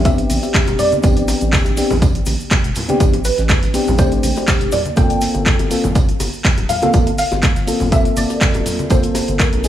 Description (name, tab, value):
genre	deep house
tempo	122 BPM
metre	4/4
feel	swing 54% on 16ths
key	unclear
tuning	A4 = 444 Hz
part	mellow FM electric piano	stabs	0.0-9.7 s	A3 to A4	-20 LUFS	left 2 dB	chorus, sidechain pumping, digital delay
part	round analog bass	bass	0.0-9.7 s	D1 to Bb1	-21 LUFS	right 1 dB	sidechain pumping
part	tube shaker	percussion	0.0-9.7 s	none	-34 LUFS	left 5 dB	none
part	soft round pluck	melody	0.1-9.7 s	Bb4 to G5	-22 LUFS	right 1 dB	ensemble chorus, digital delay
part	damped 70s drum kit	drums	0.1-9.7 s	hi-hat, snare drum, tambourine	-34 LUFS	equal	none
part	electronic kick drum	drums	0.1-9.5 s	none	-16 LUFS	equal	none
part	punchy analog drum machine	drums	0.1-9.7 s	handclaps, hi-hat	-22 LUFS	equal	none
part	bongos and congas	percussion	0.1-9.6 s	none	-26 LUFS	left 2 dB	none
room	little or no reverb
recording	studio reverb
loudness	-13 LUFS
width	side -11 dB against mid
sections	0.0-9.7 A section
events	none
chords	0.0 Am11; 4.7 Gm11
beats	0.05 0.54 | 1.04 1.53 2.02 2.51 | 3.00 3.50 3.99 4.48 | 4.97 5.46 5.95 6.45 | 6.94 7.43 7.92 8.41 | 8.90 9.40